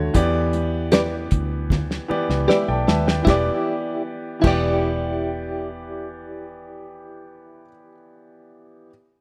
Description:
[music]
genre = lush 1970s-style soul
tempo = 77 BPM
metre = 4/4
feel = straight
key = E minor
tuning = A4 = 440 Hz
[part]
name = clear baby grand piano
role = accompaniment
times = 0.0-8.9 s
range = D3 to A5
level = -28 LUFS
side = equal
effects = none
[part]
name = vintage muted fingered electric bass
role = bass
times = 0.0-7.7 s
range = E1 to E2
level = -27 LUFS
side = equal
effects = none
[part]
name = cloth-damped thuddy drum kit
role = drums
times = 0.1-4.7 s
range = crash cymbal, hi-hat, kick drum, snare drum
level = -24 LUFS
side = equal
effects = none
[part]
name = congas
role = percussion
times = 0.2-4.7 s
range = none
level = -32 LUFS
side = equal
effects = none
[part]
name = direct-recorded clean electric guitar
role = riff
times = 0.9-8.0 s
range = E4 to D5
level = -26 LUFS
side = equal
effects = tremolo
[sound]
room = light reverb, small room ambience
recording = rough home demo mix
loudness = -21 LUFS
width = mono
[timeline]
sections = 0.0-3.3 A section; 3.3-6.4 B section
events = drum fill 1.7-3.3; grand piano fill 2.1-3.3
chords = 0.1 Em7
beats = | 0.15 0.93 1.71 2.49 | 3.27 4.05 4.83 5.61

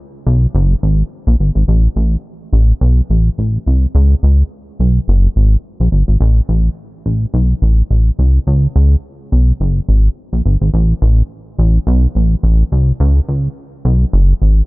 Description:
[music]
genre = funk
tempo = 106 BPM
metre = 4/4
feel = swing 56% on 16ths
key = unclear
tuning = A4 = 442 Hz
[part]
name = chorused synth bass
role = solo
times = 0.3-14.6 s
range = F#1 to C#2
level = -10 LUFS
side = equal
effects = none
[sound]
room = little or no reverb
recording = none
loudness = -11 LUFS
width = side -22 dB against mid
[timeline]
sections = 0.0-14.7 A section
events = none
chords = none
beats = 0.55 1.11 | 1.68 2.24 2.81 3.38 | 3.94 4.51 5.07 5.64 | 6.21 6.77 7.34 7.90 | 8.47 9.04 9.60 10.17 | 10.73 11.30 11.87 12.43 | 13.00 13.56 14.13

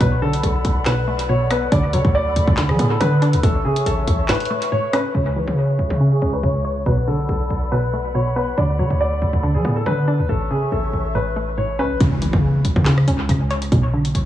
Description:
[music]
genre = hip hop, drill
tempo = 140 BPM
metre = 4/4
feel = half-time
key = C# phrygian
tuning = A4 = 439 Hz
[part]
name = dark concert grand piano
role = melody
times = 0.0-12.0 s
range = G#4 to D5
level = -23 LUFS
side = left 1 dB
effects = low-pass filter, dub echo
[part]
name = hollow square pluck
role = accompaniment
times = 0.0-14.3 s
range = A2 to C#5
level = -22 LUFS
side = right 1 dB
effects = chorus, low-pass filter, dub echo
[part]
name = mellow hollow large flute ensemble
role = sustained chords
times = 0.0-12.0 s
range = G#4 to C#6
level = -29 LUFS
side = equal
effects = low-pass filter
[part]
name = hard-hitting 808-style bass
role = bass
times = 0.0-14.3 s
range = A1 to F#3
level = -20 LUFS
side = equal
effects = none
[part]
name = drill drum kit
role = drums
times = 0.0-5.0, 12.0-14.3 s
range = handclaps, hi-hat, kick drum, rim click, snare drum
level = -22 LUFS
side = equal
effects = vintage 12-bit sampler grit, dub echo
[part]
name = impact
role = sound effects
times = 12.0-13.7 s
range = none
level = -28 LUFS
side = equal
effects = none
[sound]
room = light reverb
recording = echo-heavy mix, small room ambience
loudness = -16 LUFS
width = side -12 dB against mid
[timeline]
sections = 0.0-5.1 A section; 5.1-12.0 B section; 12.0-14.3 C section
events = kick muted 4.3-5.1; filter sweep 5.1-12.0; impact 12.0-13.7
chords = 0.0 Bm7; 1.7 D6; 3.4 A; 5.1 C#m; 6.9 Bm7; 8.6 D6; 10.3 A; 12.0 C#m; 13.7 Bm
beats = | 0.01 0.43 0.86 1.29 | 1.72 2.15 2.58 3.00 | 3.43 3.86 4.29 4.72 | 5.15 5.58 6.00 6.43 | 6.86 7.29 7.72 8.15 | 8.58 9.01 9.43 9.86 | 10.29 10.72 11.15 11.58 | 12.01 12.43 12.86 13.29 | 13.72 14.15

